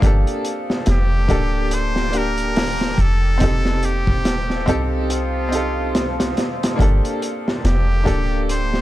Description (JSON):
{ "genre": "trip hop", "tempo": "71 BPM", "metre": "4/4", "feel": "swing 58% on 16ths", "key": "G minor", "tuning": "A4 = 438 Hz", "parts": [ { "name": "bright upright piano", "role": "accompaniment", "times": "0.0-8.8 s", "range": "Bb3 to A4", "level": "-24 LUFS", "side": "equal", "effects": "tremolo, tape echo" }, { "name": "deep dark ambient pad", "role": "sustained chords", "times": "0.0-8.8 s", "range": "Bb3 to Eb6", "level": "-29 LUFS", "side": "left 1 dB", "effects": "chorus, built-in reverb" }, { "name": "soft 808-style bass", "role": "bass", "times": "0.0-8.8 s", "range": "D1 to C2", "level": "-20 LUFS", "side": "equal", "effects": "none" }, { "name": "crunchy breakbeat drum kit", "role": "drums", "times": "0.0-8.8 s", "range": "hi-hat, kick drum, snare drum", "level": "-22 LUFS", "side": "equal", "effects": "high-pass filter on kick, high-pass filter on hats, high-pass filter on snare, high-pass filter on room" }, { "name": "trumpet with straight mute", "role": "melody", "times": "0.9-8.8 s", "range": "F4 to C5", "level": "-27 LUFS", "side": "equal", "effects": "vintage 12-bit sampler grit, tape echo" } ], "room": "small room ambience", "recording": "dark, warm production", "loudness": "-17 LUFS", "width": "side -15 dB against mid", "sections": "0.0-8.8 A section", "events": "none", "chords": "0.0 Gmadd9; 3.4 F7; 6.8 Gmadd9", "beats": "| 0.03 0.87 1.72 2.56 | 3.41 4.25 5.10 5.94 | 6.79 7.63 8.48" }